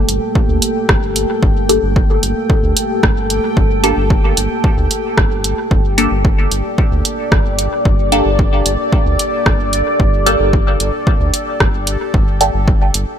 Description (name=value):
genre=dub techno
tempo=112 BPM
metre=4/4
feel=straight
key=G minor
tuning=A4 = 438 Hz
part: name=deep dark ambient pad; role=sustained chords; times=0.0-13.2 s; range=Bb3 to D5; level=-20 LUFS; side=equal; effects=chorus, built-in reverb, sidechain pumping
part: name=round analog bass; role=bass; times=0.0-13.1 s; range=G1 to D2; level=-19 LUFS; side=equal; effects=sidechain pumping
part: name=bubbling stepped-filter texture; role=texture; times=0.0-13.2 s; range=G4 to G5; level=-26 LUFS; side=left 3 dB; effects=chorus, built-in reverb, sidechain pumping
part: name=punchy analog drum machine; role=drums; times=0.1-13.1 s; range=hi-hat, rim click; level=-17 LUFS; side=right 1 dB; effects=none
part: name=electronic kick drum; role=drums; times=0.4-12.8 s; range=none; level=-15 LUFS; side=equal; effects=none
part: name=filtered dub chord stab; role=stabs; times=1.7-12.6 s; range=Bb3 to A4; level=-18 LUFS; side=equal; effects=phaser, sidechain pumping, dub echo
room=digital ambience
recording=none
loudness=-12 LUFS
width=side -9 dB against mid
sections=0.0-13.2 A section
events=none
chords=0.0 Gmadd9